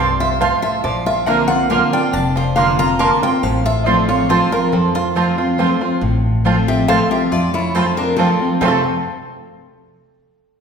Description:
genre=bluegrass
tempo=139 BPM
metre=3/4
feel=straight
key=F major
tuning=A4 = 441 Hz
part: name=bluegrass banjo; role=melody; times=0.0-8.9 s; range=F3 to Bb4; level=-22 LUFS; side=right 5 dB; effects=none
part: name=picked steel-string acoustic guitar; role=melody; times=0.0-8.8 s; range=F4 to Bb5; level=-21 LUFS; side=left 3 dB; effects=none
part: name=picked steel-string acoustic guitar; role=accompaniment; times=0.0-8.8 s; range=F2 to F4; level=-19 LUFS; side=left 1 dB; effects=none
part: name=mandolin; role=stabs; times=0.0-8.8 s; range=C4 to C6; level=-21 LUFS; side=right 5 dB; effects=none
part: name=upright bass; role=bass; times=0.0-8.8 s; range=F1 to F2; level=-22 LUFS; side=equal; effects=none
part: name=lap resonator guitar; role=second line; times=6.7-8.8 s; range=C4 to A4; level=-24 LUFS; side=left 2 dB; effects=none
room=wet recital hall reverb, RT60 1.6 s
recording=recorded in a church or concert hall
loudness=-14 LUFS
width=side -6 dB against mid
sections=0.0-6.0 A section; 6.0-8.6 B section; 8.6-9.9 C section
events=none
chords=0.0 F; 0.8 Bbadd9; 3.4 F/A; 8.6 F

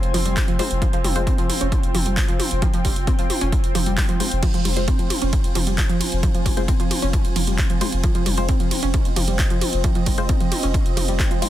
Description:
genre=driving peak-time techno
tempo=133 BPM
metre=4/4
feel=straight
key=F minor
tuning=A4 = 441 Hz
part: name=saturated sub bass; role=bass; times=0.0-11.4 s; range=F1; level=-24 LUFS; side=equal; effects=overdrive, sidechain pumping, low-pass filter
part: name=analog drone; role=drone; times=0.0-11.5 s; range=F3 to C4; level=-30 LUFS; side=equal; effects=chorus, sidechain pumping
part: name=techno drum kit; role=drums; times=0.0-11.5 s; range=crash cymbal, handclaps, hi-hat, ride cymbal, toms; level=-26 LUFS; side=equal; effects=sidechain pumping on hats, studio reverb, sidechain pumping on toms, sidechain pumping on cymbals
part: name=ethereal airy pad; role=texture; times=0.0-11.5 s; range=F4 to Ab5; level=-31 LUFS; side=right 1 dB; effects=ensemble chorus, built-in reverb, sidechain pumping
part: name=warbly dusty pluck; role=riff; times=0.1-11.4 s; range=F3 to Db4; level=-27 LUFS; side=right 2 dB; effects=chorus, overdrive, sidechain pumping, tape echo
part: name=electronic kick drum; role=drums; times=0.4-11.3 s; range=none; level=-21 LUFS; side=equal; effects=studio reverb
part: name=filtered dub chord stab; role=stabs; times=0.6-1.2, 4.2-11.5 s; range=Ab3 to C5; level=-30 LUFS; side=left 4 dB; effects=phaser, sidechain pumping, tape echo
room=digital ambience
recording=dense, heavily limited modern master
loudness=-18 LUFS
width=side -13 dB against mid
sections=0.0-11.5 A section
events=none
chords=0.0 Fm

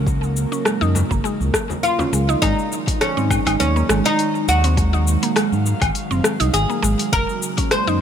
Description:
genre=organic downtempo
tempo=102 BPM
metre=4/4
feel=swing 54% on 16ths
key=unclear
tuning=A4 = 438 Hz
part: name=oud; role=melody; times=0.0-8.0 s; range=Db4 to C5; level=-22 LUFS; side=equal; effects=tape echo
part: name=airy breathy pad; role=sustained chords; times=0.0-8.0 s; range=Db3 to F5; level=-26 LUFS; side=right 2 dB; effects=chorus, sidechain pumping
part: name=smooth gliding synth bass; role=bass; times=0.0-8.0 s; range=Gb1 to Ab2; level=-19 LUFS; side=equal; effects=none
part: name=deep house drum kit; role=drums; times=0.1-8.0 s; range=cabasa, hi-hat, rim click, woodblock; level=-23 LUFS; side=left 2 dB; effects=overdrive
part: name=electronic kick drum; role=drums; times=0.1-7.7 s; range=none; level=-23 LUFS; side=equal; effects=overdrive
part: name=mallet-like synth pluck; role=arpeggios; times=0.5-8.0 s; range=Ab3 to Eb4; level=-24 LUFS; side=right 2 dB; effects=chorus, tape echo
part: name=frame drum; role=percussion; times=0.9-2.1 s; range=none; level=-28 LUFS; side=left 3 dB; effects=none
room=light reverb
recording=none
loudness=-16 LUFS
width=side -8 dB against mid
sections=0.0-2.4 A section; 2.4-8.0 B section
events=none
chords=0.0 Gb; 2.4 Ab7; 7.1 Gb

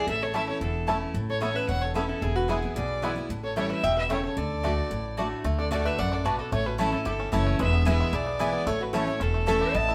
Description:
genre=bluegrass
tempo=223 BPM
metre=4/4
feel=straight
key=unclear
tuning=A4 = 440 Hz
part: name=clear fiddle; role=melody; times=0.0-9.9 s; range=G#4 to A5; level=-33 LUFS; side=equal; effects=none
part: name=lap resonator guitar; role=second line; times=0.0-9.9 s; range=E4 to E5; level=-34 LUFS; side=equal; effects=none
part: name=picked steel-string acoustic guitar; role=accompaniment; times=0.0-9.9 s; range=E2 to F#4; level=-34 LUFS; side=equal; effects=none
part: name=upright bass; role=bass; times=0.1-9.9 s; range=E1 to D2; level=-32 LUFS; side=equal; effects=none
part: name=mandolin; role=stabs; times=0.3-9.6 s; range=A3 to B5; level=-34 LUFS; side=equal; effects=none
part: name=bluegrass banjo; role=melody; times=0.4-9.9 s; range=G3 to G4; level=-37 LUFS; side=equal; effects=none
room=moderate stone room reverb, RT60 1.0 s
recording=band playing live in one room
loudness=-27 LUFS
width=mono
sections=0.0-5.4 A section; 5.4-9.9 A section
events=none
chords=0.1 A; 1.1 Aadd9; 2.2 E; 3.3 A7; 4.4 D; 6.5 A; 7.6 E; 8.7 A

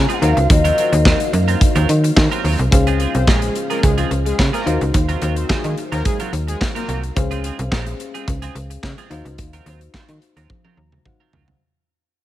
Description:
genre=early-eighties boogie funk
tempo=108 BPM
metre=4/4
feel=straight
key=Eb dorian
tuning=A4 = 436 Hz
part: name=breathy alto ocarina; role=melody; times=0.0-1.3 s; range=Eb5 to Ab5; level=-21 LUFS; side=left 2 dB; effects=tape echo
part: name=FM electric piano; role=accompaniment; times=0.0-11.6 s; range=Db4 to Bb5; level=-26 LUFS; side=left 4 dB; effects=chorus
part: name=soft string machine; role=sustained chords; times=0.1-7.1 s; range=Db3 to F5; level=-29 LUFS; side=equal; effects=ensemble chorus
part: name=slap-like FM bass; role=bass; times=0.0-11.6 s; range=Bb1 to Eb3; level=-18 LUFS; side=equal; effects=none
part: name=clean electric guitar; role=riff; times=0.1-11.5 s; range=Gb3 to C5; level=-27 LUFS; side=right 8 dB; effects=analog chorus
part: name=modern studio drum kit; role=drums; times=0.1-11.6 s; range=handclaps, hi-hat, kick drum, snare drum, toms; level=-18 LUFS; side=equal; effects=none
part: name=analog synth brass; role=second line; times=3.1-7.0 s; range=F3 to C5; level=-26 LUFS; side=equal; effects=chorus
room=studio reverb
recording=none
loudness=-15 LUFS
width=side -14 dB against mid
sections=0.0-2.7 A section; 2.7-11.6 B section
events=fade-out 2.7-11.6; drum fill 10.5-11.6; FM electric piano fill 10.5-11.6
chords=0.2 Ebm69; 2.7 Dbmaj7; 4.7 Ebm69; 7.2 Dbmaj7; 9.1 Ebm69

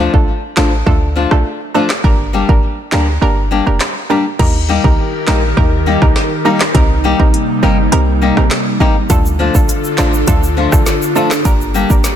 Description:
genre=dancehall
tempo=102 BPM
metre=4/4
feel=straight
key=G minor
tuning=A4 = 440 Hz
part: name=hollow square pluck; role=accompaniment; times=0.0-12.2 s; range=A3 to Bb4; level=-19 LUFS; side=right 5 dB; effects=chorus
part: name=flamenco guitar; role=arpeggios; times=0.0-11.9 s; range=F3 to G4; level=-18 LUFS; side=left 6 dB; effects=tape echo
part: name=short 808-style bass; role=bass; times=0.0-12.0 s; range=F1 to Eb2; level=-15 LUFS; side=equal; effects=none
part: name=afro-pop drum kit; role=drums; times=0.1-12.2 s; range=crash cymbal, handclaps, hi-hat, kick drum, rim click, snare drum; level=-15 LUFS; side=equal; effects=none
part: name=airy breathy pad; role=sustained chords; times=4.8-12.2 s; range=C3 to Bb4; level=-18 LUFS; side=equal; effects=chorus, sidechain pumping
part: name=egg shaker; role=percussion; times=9.1-12.2 s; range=none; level=-27 LUFS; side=left 2 dB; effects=none
room=little or no reverb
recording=dense, heavily limited modern master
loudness=-10 LUFS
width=side -10 dB against mid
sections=0.0-4.4 A section; 4.4-12.2 B section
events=kick muted 3.2-4.4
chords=0.0 Dm; 2.0 Gm; 4.4 Eb; 6.7 Cm7; 9.1 Dm; 11.5 Gm

